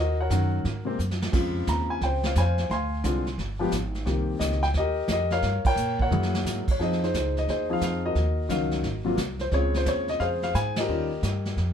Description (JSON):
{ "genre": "jazz piano trio", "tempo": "176 BPM", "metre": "4/4", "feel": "swing 65% on 8ths", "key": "F minor", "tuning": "A4 = 440 Hz", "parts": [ { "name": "warm grand piano", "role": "melody", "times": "0.0-11.7 s", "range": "C3 to C6", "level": "-26 LUFS", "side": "left 2 dB", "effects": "none" }, { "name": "upright bass", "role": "bass", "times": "0.0-11.7 s", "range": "G1 to Bb2", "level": "-28 LUFS", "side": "equal", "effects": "none" }, { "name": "vintage brush drum kit", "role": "drums", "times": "0.3-11.7 s", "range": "brushed snare drum, crash cymbal, hi-hat, kick drum, ride cymbal, snare drum, toms", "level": "-31 LUFS", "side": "right 2 dB", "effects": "none" } ], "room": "light reverb", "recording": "band playing live in one room", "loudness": "-23 LUFS", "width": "side -8 dB against mid", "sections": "0.0-6.8 A section; 6.8-11.7 B section", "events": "drum fill 1.0-1.3, 6.1-6.4; band accent 5.6, 10.7", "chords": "0.0 Ebm7; 0.6 Ab9; 1.3 Dbmaj7; 2.7 Dm7b5; 3.4 G5; 4.1 Cm7; 5.4 Gdim; 6.1 Gb9; 6.8 Fm7; 8.2 Ebm9; 8.8 Ab9; 9.5 Dbmaj7; 10.9 Eb9" }